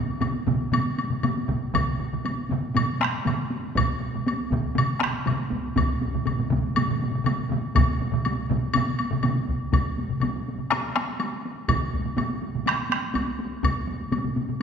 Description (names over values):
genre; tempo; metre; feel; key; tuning
japanese traditional, taiko drum ensemble; 121 BPM; 4/4; straight; none; none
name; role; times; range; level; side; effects
taiko ensemble; percussion; 0.2-14.6 s; none; -29 LUFS; equal; none
taiko ensemble; percussion; 0.2-14.6 s; none; -29 LUFS; left 3 dB; none
taiko ensemble; percussion; 0.2-13.0 s; none; -28 LUFS; right 4 dB; none
woodblock; percussion; 0.2-14.2 s; none; -30 LUFS; left 3 dB; none
taiko ensemble; percussion; 0.5-13.7 s; none; -28 LUFS; equal; none
room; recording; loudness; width
wet concert hall reverb, RT60 2.2 s; minimal, uncompressed stereo recording; -23 LUFS; side -7 dB against mid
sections
0.0-9.7 A section; 9.7-14.6 B section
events
speeding up 0.0-14.6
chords
none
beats
0.23 0.74 1.24 | 1.75 2.25 2.76 3.26 | 3.76 4.27 4.77 5.27 | 5.77 6.26 6.76 7.26 | 7.75 8.25 8.74 9.24 | 9.73 10.22 10.71 11.20 | 11.69 12.18 12.67 13.15 | 13.64 14.12